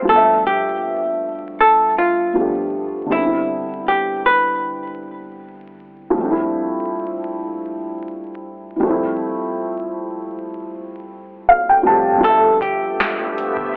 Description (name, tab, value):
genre	lo-fi hip hop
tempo	79 BPM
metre	4/4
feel	swing 55% on 16ths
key	unclear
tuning	A4 = 440 Hz
part	felt-muted upright piano	accompaniment	0.0-13.8 s	G2 to A5	-22 LUFS	equal	cassette tape, low-pass filter
part	archtop guitar, miked and amplified	melody	0.1-6.1, 12.2-13.2 s	E4 to B4	-18 LUFS	equal	low-pass filter
part	granular cloud pad	sustained chords	12.9-13.8 s	F3 to E5	-27 LUFS	equal	built-in reverb, low-pass filter
part	booming analog drum machine	drums	12.2-13.7 s	finger snaps, hi-hat, kick drum, snare drum	-25 LUFS	equal	none
room	light reverb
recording	dry, gritty hardware recording, vinyl crackle, telephone sound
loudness	-18 LUFS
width	mono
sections	0.1-12.2 A section; 12.2-13.8 B section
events	felt piano fill 11.1-12.2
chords	0.1 G13; 3.1 Cmaj9; 6.2 Fmaj9; 12.2 G13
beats	| 0.08 0.84 1.60 2.36 | 3.12 3.88 4.63 5.39 | 6.15 6.91 7.67 8.43 | 9.19 9.95 10.71 11.47 | 12.23 12.99 13.75